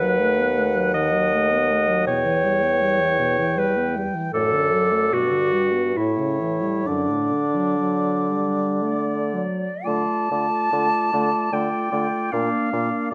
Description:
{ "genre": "classical, slow romantic movement for wind quintet", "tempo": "54-82 BPM", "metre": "3/4", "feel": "rubato", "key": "D major, D minor from 9.9 s", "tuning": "A4 = 437 Hz", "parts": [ { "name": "warm oboe", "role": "second line", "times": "0.0-13.1 s", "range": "C#5 to G5", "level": "-31 LUFS", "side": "equal", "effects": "none" }, { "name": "clear clarinet", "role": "accompaniment", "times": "0.0-13.1 s", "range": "D4 to D#5", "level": "-24 LUFS", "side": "equal", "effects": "none" }, { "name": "warm French horn", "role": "accompaniment", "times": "0.0-13.1 s", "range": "F#2 to B3", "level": "-30 LUFS", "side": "equal", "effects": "none" }, { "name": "warm bassoon", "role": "bass", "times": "0.0-13.1 s", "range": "D#2 to D3", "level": "-29 LUFS", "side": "equal", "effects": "none" }, { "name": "bright concert flute", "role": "melody", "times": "8.8-13.1 s", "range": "D5 to A5", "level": "-27 LUFS", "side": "equal", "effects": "none" } ], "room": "moderate recital hall reverb, RT60 1.5 s", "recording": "none", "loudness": "-21 LUFS", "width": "mono", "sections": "0.0-9.9 A section; 9.9-13.1 B section", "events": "none", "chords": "0.0 B7/D#; 2.1 Em; 4.3 D/F#; 5.1 G; 6.0 A7; 6.9 D/F#; 9.9 Dm; 12.3 Bb", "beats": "0.56 1.32 | 2.08 2.82 3.58 | 4.34 5.13 5.97 | 6.87 7.79 8.82 | 9.86 10.73 11.53 | 12.33 13.12" }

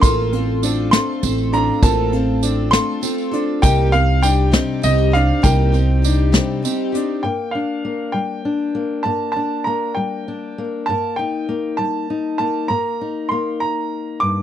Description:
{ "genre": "indie folk with a building arrangement", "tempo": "66 BPM (dotted quarters)", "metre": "6/8", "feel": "straight", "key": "G minor", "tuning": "A4 = 440 Hz", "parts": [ { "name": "bright upright piano", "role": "melody", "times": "0.0-14.4 s", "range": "Eb5 to D6", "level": "-22 LUFS", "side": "right 1 dB", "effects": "none" }, { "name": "picked plugged-in twelve-string acoustic guitar", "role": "accompaniment", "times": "0.0-7.2 s", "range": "C3 to A4", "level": "-22 LUFS", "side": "left 7 dB", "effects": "wide subtle chorus" }, { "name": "clear upright piano", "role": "arpeggios", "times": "0.0-7.2 s", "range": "Bb3 to D4", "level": "-23 LUFS", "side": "right 7 dB", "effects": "none" }, { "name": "upright bass", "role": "bass", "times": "0.0-6.4 s", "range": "A1 to C2", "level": "-18 LUFS", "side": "equal", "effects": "none" }, { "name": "soft brush drum kit", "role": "drums", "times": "0.0-7.1 s", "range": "hi-hat, kick drum, snare drum", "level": "-16 LUFS", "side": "equal", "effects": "none" }, { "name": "tambourine", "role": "percussion", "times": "0.0-7.0 s", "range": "none", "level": "-28 LUFS", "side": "right 18 dB", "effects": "none" }, { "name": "fingerpicked steel-string acoustic guitar", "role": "accompaniment", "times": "7.2-14.4 s", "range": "G2 to Eb4", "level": "-22 LUFS", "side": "left 4 dB", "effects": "none" } ], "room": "small room ambience", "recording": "dry, close 1970s-style studio recording", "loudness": "-16 LUFS", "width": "side -10 dB against mid", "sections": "0.0-7.2 A section; 7.2-14.4 B section", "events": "none", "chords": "0.0 F/A; 3.6 Cm; 7.2 Gm; 10.9 Eb/G", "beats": "| 0.03 0.93 | 1.83 2.73 | 3.63 4.53 | 5.43 6.34 | 7.25 8.15 | 9.06 9.97 | 10.88 11.79 | 12.71 13.62" }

